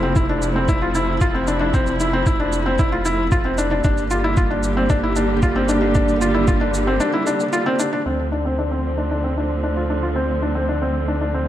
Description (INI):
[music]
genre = piano and strings electronica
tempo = 114 BPM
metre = 4/4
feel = straight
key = D minor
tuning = A4 = 440 Hz
[part]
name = warm studio string section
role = sustained chords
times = 0.0-11.5 s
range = C3 to G4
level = -23 LUFS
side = right 1 dB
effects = sidechain pumping
[part]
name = felt-muted upright piano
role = riff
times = 0.0-11.4 s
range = C4 to F4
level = -21 LUFS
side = left 1 dB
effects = low-pass filter, ping-pong delay
[part]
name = warm sub bass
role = bass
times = 0.0-11.5 s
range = F1 to D2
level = -25 LUFS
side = equal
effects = sidechain pumping
[part]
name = electronic kick drum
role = drums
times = 0.2-6.6 s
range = none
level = -19 LUFS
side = equal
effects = none
[part]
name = shaker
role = drums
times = 0.2-7.9 s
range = none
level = -33 LUFS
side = right 3 dB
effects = overdrive, low-pass filter on perc
[sound]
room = moderate concert hall reverb, RT60 2.4 s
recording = dark, warm production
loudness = -17 LUFS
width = side -12 dB against mid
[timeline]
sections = 0.0-8.1 A section; 8.1-11.5 B section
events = break 7.0-8.1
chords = 0.0 Fmaj7; 3.8 Gm; 8.1 Dm7